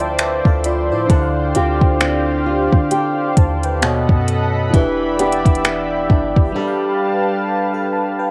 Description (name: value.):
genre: contemporary R&B.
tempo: 66 BPM.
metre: 4/4.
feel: swing 58% on 16ths.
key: unclear.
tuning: A4 = 440 Hz.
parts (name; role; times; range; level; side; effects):
FM electric piano; accompaniment; 0.0-8.3 s; B2 to B5; -26 LUFS; equal; chorus, cassette tape.
lush unison pad; sustained chords; 0.0-8.3 s; F3 to B5; -24 LUFS; equal; chorus, sidechain pumping, cassette tape.
flamenco guitar; arpeggios; 0.0-8.3 s; B2 to G4; -23 LUFS; equal; cassette tape, analog delay.
clean 808-style bass; bass; 0.0-6.5 s; E1 to D3; -25 LUFS; equal; none.
smooth R&B drum kit; drums; 0.0-6.5 s; finger snaps, hi-hat, kick drum; -17 LUFS; equal; cassette tape.
room: light reverb, digital ambience.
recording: home recording on cassette.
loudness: -17 LUFS.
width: mono.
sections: 0.0-8.3 A section.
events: FM electric piano fill 0.0-1.1; break 6.6-8.3.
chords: 0.0 Dm9; 1.1 G7sus4/D; 3.8 B7; 4.7 Em7; 6.6 G9.